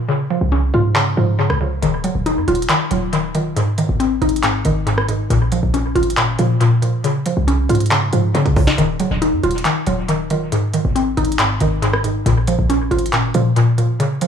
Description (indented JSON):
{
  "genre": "hip hop, trap",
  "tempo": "138 BPM",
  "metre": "4/4",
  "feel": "half-time",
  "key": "Eb dorian",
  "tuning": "A4 = 440 Hz",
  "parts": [
    { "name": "mallet-like synth pluck", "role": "accompaniment", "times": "0.0-14.3 s", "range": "Ab2 to F4", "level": "-18 LUFS", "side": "left 1 dB", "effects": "chorus, dub echo" },
    { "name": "short 808-style bass", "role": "bass", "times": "0.4-13.8 s", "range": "Db1 to Db3", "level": "-19 LUFS", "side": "equal", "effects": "none" },
    { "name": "trap drum kit", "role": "drums", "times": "1.0-14.3 s", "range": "handclaps, hi-hat, kick drum, rim click, snare drum", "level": "-22 LUFS", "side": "equal", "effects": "dub echo" }
  ],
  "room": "little or no reverb",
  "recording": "echo-heavy mix, studio ambience",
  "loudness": "-15 LUFS",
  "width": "side -8 dB against mid",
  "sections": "0.0-8.8 A section; 8.8-14.3 B section",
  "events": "break 0.0-1.8; drum fill 8.3-8.8",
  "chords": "0.1 Db; 1.8 Ebmadd9; 3.6 Ab; 5.3 Bbm; 7.0 Db; 8.8 Ebmadd9; 10.5 Ab; 12.3 Bbm",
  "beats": "| 0.09 0.52 0.96 1.39 | 1.82 2.26 2.69 3.13 | 3.56 4.00 4.43 4.87 | 5.30 5.74 6.17 6.61 | 7.04 7.48 7.91 8.35 | 8.78 9.22 9.65 10.09 | 10.52 10.96 11.39 11.82 | 12.26 12.70 13.13 13.56 | 14.00"
}